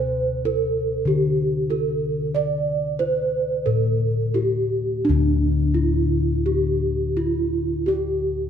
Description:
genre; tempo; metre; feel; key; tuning
Javanese gamelan; 85-100 BPM; 4/4; straight; D slendro; A4 = 443 Hz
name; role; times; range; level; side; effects
gamelan-type bronze metallophone; melody; 0.0-8.5 s; D4 to D5; -22 LUFS; right 3 dB; none
gamelan-type bossed gongs; bass; 0.0-8.5 s; D2 to D5; -23 LUFS; left 3 dB; none
room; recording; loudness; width
moderate scoring stage reverb, RT60 1.6 s; none; -20 LUFS; side -8 dB against mid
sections
0.0-5.1 A section; 5.1-8.5 B section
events
none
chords
none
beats
0.46 1.08 1.71 | 2.35 3.00 3.67 4.36 | 5.05 5.76 6.46 7.17 | 7.88

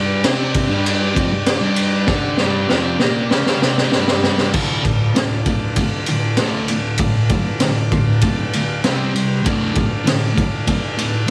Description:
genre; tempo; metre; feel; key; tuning
garage rock duo or trio; 98 BPM; 4/4; straight; D minor; A4 = 440 Hz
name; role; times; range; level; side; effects
combo organ; sustained chords; 0.0-11.3 s; D4 to C6; -30 LUFS; equal; cassette tape
thick fuzz guitar; riff; 0.0-11.3 s; D2 to D4; -21 LUFS; equal; distortion, cassette tape
raw garage drum kit; drums; 0.2-11.3 s; crash cymbal, kick drum, ride cymbal, snare drum; -21 LUFS; equal; none
room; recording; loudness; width
little or no reverb; home recording on cassette; -18 LUFS; mono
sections
0.0-4.5 A section; 4.5-11.3 B section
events
drum fill 2.1-4.5; transistor combo organ fill 7.6-9.5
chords
0.0 G5; 4.5 Dm; 8.8 C5; 9.5 Dm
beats
0.24 0.86 1.47 | 2.09 2.70 3.32 3.93 | 4.55 5.16 5.78 6.39 | 7.00 7.62 8.23 8.84 | 9.46 10.07 10.68 11.29

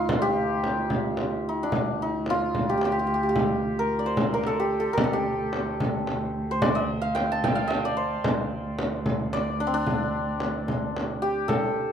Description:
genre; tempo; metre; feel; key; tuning
Persian modal ensemble; 74 BPM (dotted quarters); 6/8; straight; D dastgah shur; A4 = 440 Hz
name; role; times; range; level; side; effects
santur; melody; 0.0-11.9 s; C4 to A5; -26 LUFS; equal; none
dark cello; drone; 0.0-11.6 s; D2; -32 LUFS; right 2 dB; none
frame drum; percussion; 0.1-11.6 s; none; -28 LUFS; equal; none
room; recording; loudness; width
light reverb; close, detailed microphones; -23 LUFS; side -8 dB against mid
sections
0.0-11.5 A section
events
none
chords
none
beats
| 0.10 0.92 | 1.73 2.55 | 3.36 4.18 | 4.99 5.80 | 6.62 7.43 | 8.24 9.06 | 9.87 10.68 | 11.50

